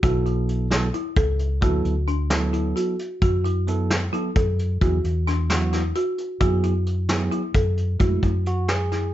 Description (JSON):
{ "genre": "progressive instrumental, band music in an uneven meter", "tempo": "263 BPM (eighths)", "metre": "7/8", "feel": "straight", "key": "F# minor", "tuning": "A4 = 435 Hz", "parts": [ { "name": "bell-like tine electric piano", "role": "accompaniment", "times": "0.0-9.1 s", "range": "F#3 to A4", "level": "-27 LUFS", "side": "right 4 dB", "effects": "none" }, { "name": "folk marimba with medium mallets", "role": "arpeggios", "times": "0.0-9.1 s", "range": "D4 to A4", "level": "-27 LUFS", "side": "left 1 dB", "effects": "none" }, { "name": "hollow-body short-scale fingered electric bass", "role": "bass", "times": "0.0-9.1 s", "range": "B1 to F#2", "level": "-23 LUFS", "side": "equal", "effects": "none" }, { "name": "vintage brush drum kit", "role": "drums", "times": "0.0-9.0 s", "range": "hi-hat, kick drum, snare drum", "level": "-24 LUFS", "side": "equal", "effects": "none" } ], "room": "light reverb", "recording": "nothing above 7.7 kHz", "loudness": "-20 LUFS", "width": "side -13 dB against mid", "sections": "0.0-8.0 A section; 8.0-9.1 B section", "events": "tine electric piano solo 8.0-9.1", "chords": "0.0 B5; 1.6 D; 3.2 F#m7; 4.8 E7sus2; 6.4 F#m7; 8.0 F#m9" }